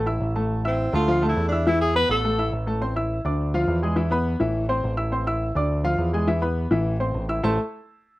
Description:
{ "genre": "latin, salsa", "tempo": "208 BPM", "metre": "4/4", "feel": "straight", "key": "A harmonic minor", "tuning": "A4 = 440 Hz", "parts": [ { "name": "warm concert grand piano", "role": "accompaniment", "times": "0.0-7.6 s", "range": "E3 to E6", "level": "-24 LUFS", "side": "left 1 dB", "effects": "none" }, { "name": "picked electric bass", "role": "bass", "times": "0.0-7.6 s", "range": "A1 to E2", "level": "-25 LUFS", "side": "equal", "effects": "none" }, { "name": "warm tenor saxophone", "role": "melody", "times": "0.7-2.5 s", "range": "C4 to B4", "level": "-24 LUFS", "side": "equal", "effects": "none" } ], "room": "little or no reverb", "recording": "recorded outdoors, with no room sound", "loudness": "-21 LUFS", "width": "side -18 dB against mid", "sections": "0.0-2.8 A section; 2.8-7.4 B section", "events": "none", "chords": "0.0 Am; 1.1 Dm; 1.7 E5; 2.2 A5; 2.8 Am; 3.4 Dm; 4.0 E5; 4.5 Am; 5.7 Dm; 6.3 E5; 6.9 Am" }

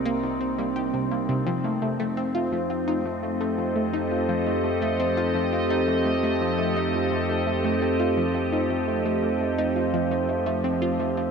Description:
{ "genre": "ambient, sequencer-driven space music", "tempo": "85 BPM", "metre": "4/4", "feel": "straight", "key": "unclear", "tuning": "A4 = 440 Hz", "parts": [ { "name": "evolving wavetable pad", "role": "sustained chords", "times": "0.0-11.3 s", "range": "C3 to Eb5", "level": "-26 LUFS", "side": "equal", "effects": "chorus, built-in reverb" }, { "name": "vibraphone with soft mallets", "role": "arpeggios", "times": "0.0-11.3 s", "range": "G3 to C5", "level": "-28 LUFS", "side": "right 2 dB", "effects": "auto-pan, tape echo" }, { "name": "fat analog bass", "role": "bass", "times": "0.0-11.3 s", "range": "C2 to F2", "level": "-35 LUFS", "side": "left 1 dB", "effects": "none" }, { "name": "analog pluck", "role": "riff", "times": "0.1-11.3 s", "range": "C3 to G4", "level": "-29 LUFS", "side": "equal", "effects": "chorus, phaser, tape echo" } ], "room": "wet lush hall reverb, RT60 2.6 s", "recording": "dreamy mix soaked in reverb", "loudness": "-22 LUFS", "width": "side -6 dB against mid", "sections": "0.0-11.3 A section", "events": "none", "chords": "0.0 Cm7; 1.5 F7" }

